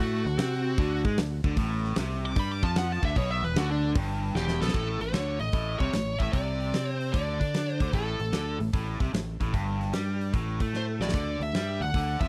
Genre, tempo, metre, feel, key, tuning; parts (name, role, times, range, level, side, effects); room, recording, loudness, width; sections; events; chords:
blues rock power trio and southern rock; 150 BPM; 4/4; swing 67% on 8ths; A4 = 440 Hz
bluesy overdriven lead guitar; melody; 0.0-12.3 s; D4 to D6; -35 LUFS; equal; distortion, tape echo
biting overdriven guitar; riff; 0.0-12.3 s; E2 to D4; -36 LUFS; equal
growling fingered electric bass; bass; 0.0-12.3 s; E1 to D3; -33 LUFS; equal; overdrive
big rock drum kit; drums; 0.3-12.3 s; crash cymbal, hi-hat, kick drum, snare drum; -31 LUFS; equal
studio reverb; dry, close 1970s-style studio recording; -28 LUFS; mono
0.0-4.8 A section; 4.8-12.3 B section
lead electric guitar solo 0.0-4.8; drum fill 4.4-4.8, 10.7-11.1
0.0 D7; 1.6 Am; 2.4 Dmadd11; 3.2 E5; 4.8 A; 6.3 Csus2; 7.9 Gsus2; 11.1 D